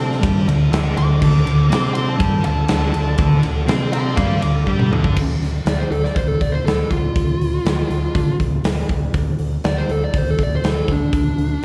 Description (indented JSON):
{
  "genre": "blues rock power trio and southern rock",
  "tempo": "121 BPM",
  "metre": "4/4",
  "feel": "straight",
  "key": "D minor",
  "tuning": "A4 = 437 Hz",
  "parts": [
    { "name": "fuzz lead guitar", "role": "melody", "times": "0.0-11.6 s", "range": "D4 to D6", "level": "-27 LUFS", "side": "equal", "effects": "distortion, slapback echo" },
    { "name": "overdriven tonewheel organ", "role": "sustained chords", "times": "0.0-5.1 s", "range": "A3 to Bb4", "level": "-34 LUFS", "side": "equal", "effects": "none" },
    { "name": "thick fuzz guitar", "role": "riff", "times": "0.0-5.2 s", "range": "D3 to C4", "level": "-22 LUFS", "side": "equal", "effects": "distortion" },
    { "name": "growling fingered electric bass", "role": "bass", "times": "0.0-11.5 s", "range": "D2 to D3", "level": "-23 LUFS", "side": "equal", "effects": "overdrive" },
    { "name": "big rock drum kit", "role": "drums", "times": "0.1-11.5 s", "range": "crash cymbal, hi-hat, kick drum, ride cymbal, snare drum, toms", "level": "-23 LUFS", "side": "equal", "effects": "none" }
  ],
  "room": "moderate lush hall reverb, RT60 1.7 s, small room ambience",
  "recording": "big arena sound, studio reverb",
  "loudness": "-18 LUFS",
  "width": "mono",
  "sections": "0.0-5.2 A section; 5.2-11.6 B section",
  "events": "lead electric guitar solo 0.0-5.2; drum fill 4.7-5.2",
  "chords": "0.0 Dm",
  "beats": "0.23 0.73 | 1.22 1.71 2.21 2.70 | 3.19 3.69 4.18 4.68 | 5.17 5.67 6.16 6.66 | 7.16 7.65 8.15 8.64 | 9.14 9.64 10.14 10.63 | 11.13 11.63"
}